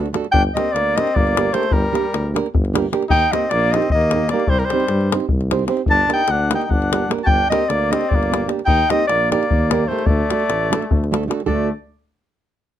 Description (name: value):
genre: balkan folk, Balkan wedding band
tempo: 301 BPM (eighths)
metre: 7/8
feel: straight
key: unclear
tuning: A4 = 440 Hz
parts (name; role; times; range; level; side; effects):
- nylon-string guitar; accompaniment; 0.0-11.7 s; A3 to C5; -22 LUFS; right 7 dB; none
- mellow tuba; bass; 0.0-11.7 s; G1 to G2; -22 LUFS; equal; none
- davul; percussion; 0.1-11.7 s; none; -21 LUFS; left 2 dB; none
- mellow soprano saxophone; melody; 0.3-11.7 s; Bb4 to A5; -19 LUFS; equal; slapback echo
- mellow trumpet; second line; 0.3-11.7 s; G3 to F#4; -26 LUFS; left 5 dB; none
room: little or no reverb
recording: close, detailed microphones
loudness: -16 LUFS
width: side -11 dB against mid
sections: 0.3-11.5 A section; 11.5-12.8 B section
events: none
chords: 0.3 Gm; 3.1 Eb; 4.5 Cm; 5.9 Gm; 8.7 Eb; 10.1 D